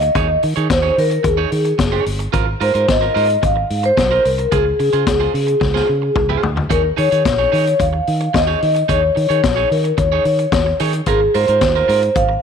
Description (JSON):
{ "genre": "disco", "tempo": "110 BPM", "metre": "4/4", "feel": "straight", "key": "unclear", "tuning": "A4 = 442 Hz", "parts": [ { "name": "vibraphone with soft mallets", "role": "melody", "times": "0.0-12.4 s", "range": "Ab4 to F5", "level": "-16 LUFS", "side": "left 1 dB", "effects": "slapback echo" }, { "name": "electric guitar at the edge of break-up", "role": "accompaniment", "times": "0.0-12.3 s", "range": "Eb4 to Db5", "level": "-24 LUFS", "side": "right 13 dB", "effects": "none" }, { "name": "fingered electric bass", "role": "bass", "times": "0.0-12.4 s", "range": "Gb1 to Eb3", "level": "-20 LUFS", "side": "equal", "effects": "none" }, { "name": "vintage drum kit", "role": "drums", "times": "0.0-12.3 s", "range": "hi-hat, kick drum, snare drum, toms", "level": "-21 LUFS", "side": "left 3 dB", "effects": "none" } ], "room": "light reverb, small room reverb", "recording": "1960s-style stereo", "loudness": "-14 LUFS", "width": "side -7 dB against mid", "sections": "0.0-6.7 A section; 6.7-12.4 B section", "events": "drum fill 5.6-6.7", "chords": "0.2 Eb7sus4; 2.3 Ab69; 4.5 Dbmaj7; 6.7 Eb7sus4; 11.1 Ab69" }